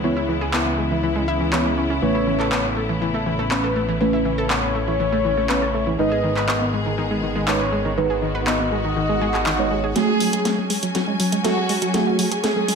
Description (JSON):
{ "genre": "progressive house", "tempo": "121 BPM", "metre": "4/4", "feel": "straight", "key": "F# dorian", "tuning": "A4 = 441 Hz", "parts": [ { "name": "rich studio string section", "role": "sustained chords", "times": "0.0-12.8 s", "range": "C#3 to G#5", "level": "-26 LUFS", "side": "left 1 dB", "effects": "none" }, { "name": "analog pluck", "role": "arpeggios", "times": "0.0-12.7 s", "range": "D#3 to B4", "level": "-25 LUFS", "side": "left 1 dB", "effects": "chorus, dub echo" }, { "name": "deep mellow chord stab", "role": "stabs", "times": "0.0-12.8 s", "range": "G#3 to C#5", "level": "-25 LUFS", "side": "right 4 dB", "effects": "chorus, phaser, dub echo" }, { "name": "fat analog bass", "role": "bass", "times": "0.0-9.9 s", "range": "G#1 to C#2", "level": "-28 LUFS", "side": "equal", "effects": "none" }, { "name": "soft octave-layered synth lead", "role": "melody", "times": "0.5-12.8 s", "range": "E4 to D#5", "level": "-26 LUFS", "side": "left 2 dB", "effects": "chorus, cassette tape, dub echo" }, { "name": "house drum kit", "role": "drums", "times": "0.5-12.8 s", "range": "handclaps, hi-hat, snare drum", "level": "-25 LUFS", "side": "equal", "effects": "overdrive" }, { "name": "swell", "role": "sound effects", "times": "9.2-10.0 s", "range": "none", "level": "-28 LUFS", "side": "right 4 dB", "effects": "none" }, { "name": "rich chamber violin section", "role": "second line", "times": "10.0-12.8 s", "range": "F#4 to G#4", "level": "-29 LUFS", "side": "right 1 dB", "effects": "dub echo" } ], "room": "light reverb", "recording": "none", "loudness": "-18 LUFS", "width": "side -5 dB against mid", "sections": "0.0-10.0 A section; 10.0-12.8 B section", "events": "swell 9.2-10.0; build-up 10.0-12.8; drum fill 10.0-12.8; filter sweep on synth pluck 10.0-12.8", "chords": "0.0 C#m7; 2.0 Aadd9; 6.0 G#m; 10.0 F#madd9" }